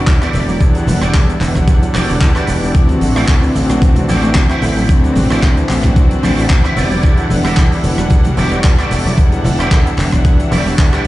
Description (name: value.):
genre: nu-disco, nu disco.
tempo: 112 BPM.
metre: 4/4.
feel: swing 54% on 16ths.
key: E minor.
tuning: A4 = 441 Hz.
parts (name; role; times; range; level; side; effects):
bright symphonic string section; sustained chords; 0.0-11.1 s; G3 to F#5; -25 LUFS; left 2 dB; sidechain pumping.
slap bass; bass; 0.0-11.1 s; E1 to E2; -17 LUFS; equal; none.
analog pluck; arpeggios; 0.1-11.1 s; D3 to C4; -24 LUFS; right 3 dB; none.
electronic kick drum; drums; 0.1-10.9 s; none; -11 LUFS; equal; overdrive.
tight funk drum kit; drums; 0.1-11.1 s; handclaps, hi-hat, rim click, shaker; -23 LUFS; equal; none.
warm analog pad; accompaniment; 0.2-11.1 s; E3 to F#5; -19 LUFS; equal; chorus, ping-pong delay.
electric guitar with an envelope filter; riff; 0.2-11.1 s; E4 to E5; -22 LUFS; right 2 dB; ensemble chorus, ping-pong delay.
congas; percussion; 0.9-10.6 s; none; -21 LUFS; left 1 dB; none.
room: studio reverb.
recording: played on a big sound system in a bare room, large studio reverb, nothing above 10.9 kHz.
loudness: -10 LUFS.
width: side -16 dB against mid.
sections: 0.0-11.1 A section.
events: none.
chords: 0.0 Em9; 2.7 D9; 6.8 Em9.